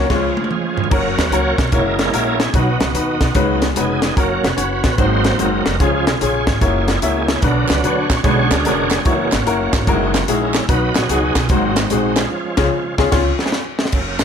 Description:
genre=uptempo gospel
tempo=147 BPM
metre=4/4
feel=swing 65% on 8ths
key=F# major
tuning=A4 = 440 Hz
part: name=bright grand piano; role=accompaniment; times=0.0-13.3 s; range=G#2 to E5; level=-20 LUFS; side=left 4 dB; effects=none
part: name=bright tonewheel organ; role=sustained chords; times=0.0-14.2 s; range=D3 to C#5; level=-20 LUFS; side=right 4 dB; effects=fast rotary speaker, overdrive, chorus vibrato
part: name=upright bass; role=bass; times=0.0-14.2 s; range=E#1 to D#2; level=-22 LUFS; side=right 1 dB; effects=none
part: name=crisp fusion drum kit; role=drums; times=0.1-14.2 s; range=crash cymbal, hi-hat, kick drum, snare drum, toms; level=-19 LUFS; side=equal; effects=none
part: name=group handclap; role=percussion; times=7.7-14.2 s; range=none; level=-28 LUFS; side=right 6 dB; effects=none
room=light reverb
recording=none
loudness=-14 LUFS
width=side -7 dB against mid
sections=0.9-13.9 A section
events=band accent 0.0-0.9, 12.3-13.9; drum fill 0.1-0.9, 13.1-13.9; tonewheel organ solo 0.9-13.9; grand piano fill 13.1-13.9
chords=0.1 C#; 0.9 F#; 1.7 F#7; 2.5 B; 3.4 C#9sus4; 4.2 F#; 5.0 G#7; 5.8 C#; 6.6 F#7; 7.4 Bm; 8.2 Bm6; 9.1 F#7; 9.9 F#13; 10.7 B; 11.5 G#7; 12.3 C#

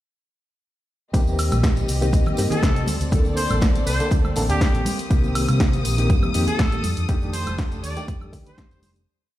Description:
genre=filtered disco house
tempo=121 BPM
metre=4/4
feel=swing 53% on 16ths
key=F mixolydian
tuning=A4 = 440 Hz
part: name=overdriven reed electric piano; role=accompaniment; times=1.1-9.1 s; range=D3 to A4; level=-27 LUFS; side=left 1 dB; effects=fast tremolo, phaser, sidechain pumping
part: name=muted studio string section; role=sustained chords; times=1.1-9.1 s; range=Bb3 to Eb6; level=-32 LUFS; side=left 1 dB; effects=sidechain pumping
part: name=hollow-body short-scale fingered electric bass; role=bass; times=1.1-9.0 s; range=F1 to D3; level=-24 LUFS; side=equal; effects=sidechain pumping
part: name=electronic kick drum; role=drums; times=1.1-8.7 s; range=none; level=-20 LUFS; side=equal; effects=overdrive
part: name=punchy analog drum machine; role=drums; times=1.1-9.1 s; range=hi-hat, shaker, snare drum, woodblock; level=-28 LUFS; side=equal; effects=overdrive, sidechain pumping on hats, sidechain pumping on perc
part: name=tambourine and congas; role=percussion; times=1.1-9.0 s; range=none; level=-33 LUFS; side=right 3 dB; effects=sidechain pumping on perc
part: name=clear horn section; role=melody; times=2.5-8.9 s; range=G4 to D5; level=-29 LUFS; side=left 1 dB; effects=sidechain pumping, ping-pong delay
room=small room ambience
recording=played on a big sound system in a bare room, stone room reverb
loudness=-18 LUFS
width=side -14 dB against mid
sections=1.1-9.1 drop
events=drop 1.1-9.1; fade-out 6.4-9.1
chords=1.1 Eb6; 2.9 Bbmaj9; 4.9 Cm7; 6.8 F13

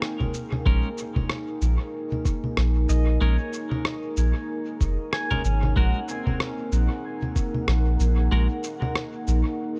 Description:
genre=ambient dub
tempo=94 BPM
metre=4/4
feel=swing 58% on 16ths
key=Bb minor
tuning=A4 = 440 Hz
part: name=deep dark ambient pad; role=sustained chords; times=0.0-9.8 s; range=Bb3 to Gb5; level=-33 LUFS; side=equal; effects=chorus, built-in reverb
part: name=pedal steel guitar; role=arpeggios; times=0.0-8.0 s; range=C4 to Ab5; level=-39 LUFS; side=equal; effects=low-pass filter, dub echo
part: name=electronic rim click, congas and shaker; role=drums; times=0.0-9.4 s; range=none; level=-32 LUFS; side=equal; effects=dub echo
part: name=electronic kick drum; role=drums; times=0.2-7.5 s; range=none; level=-28 LUFS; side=equal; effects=none
part: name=clean electric guitar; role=stabs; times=0.7-8.5 s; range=Ab3 to Bb4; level=-35 LUFS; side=equal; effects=dub echo
part: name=soft dub sub bass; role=bass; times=0.7-9.4 s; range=F1 to Bb1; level=-23 LUFS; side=equal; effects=none
room=little or no reverb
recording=echo-heavy mix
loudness=-25 LUFS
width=mono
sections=0.0-9.8 A section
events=filter sweep on pedal steel guitar 0.0-9.8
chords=0.0 Bbm7; 5.8 Gbadd9

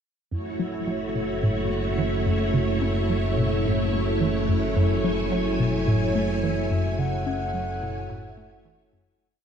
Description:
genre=ambient, sequencer-driven space music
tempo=108 BPM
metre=4/4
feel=straight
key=F# minor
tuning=A4 = 437 Hz
part: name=string machine, full ensemble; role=sustained chords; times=0.3-9.2 s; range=A3 to G#5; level=-28 LUFS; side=right 1 dB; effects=ensemble chorus
part: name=vibraphone with soft mallets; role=arpeggios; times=0.3-9.2 s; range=E4 to F#5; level=-31 LUFS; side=right 1 dB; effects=auto-pan, ping-pong delay
part: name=hollow square pluck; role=riff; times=0.3-9.1 s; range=F#2 to C#4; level=-27 LUFS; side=equal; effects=chorus, ping-pong delay
part: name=analog drone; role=bass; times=1.1-9.2 s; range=F#1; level=-28 LUFS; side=equal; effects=chorus
part: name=mellow horn-like synth lead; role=melody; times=5.9-8.9 s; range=C#5 to F#5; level=-32 LUFS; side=left 2 dB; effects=chorus, ping-pong delay
room=wet huge ambient reverb, RT60 7.4 s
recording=dark, warm production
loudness=-22 LUFS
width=side -8 dB against mid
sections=0.3-9.2 A section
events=filter sweep on synth arpeggio sound 0.3-9.2; fade-out 6.2-9.2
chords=0.3 F#m7

